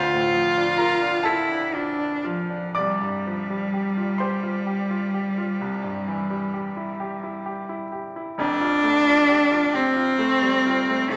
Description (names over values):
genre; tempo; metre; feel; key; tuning
classical, romantic duo for cello and grand piano; 38-47 BPM (dotted quarters); 12/8; rubato; F major; A4 = 439 Hz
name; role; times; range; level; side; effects
clear cello; melody; 0.0-11.2 s; F3 to A4; -24 LUFS; equal; none
bright baby grand piano; accompaniment; 0.0-11.2 s; F1 to D6; -30 LUFS; equal; none
room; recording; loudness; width
wet recital hall reverb, RT60 1.2 s; none; -23 LUFS; mono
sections
0.0-8.4 A section; 8.4-11.2 B section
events
none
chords
0.0 Dm; 2.8 Csus4; 5.6 C; 8.4 F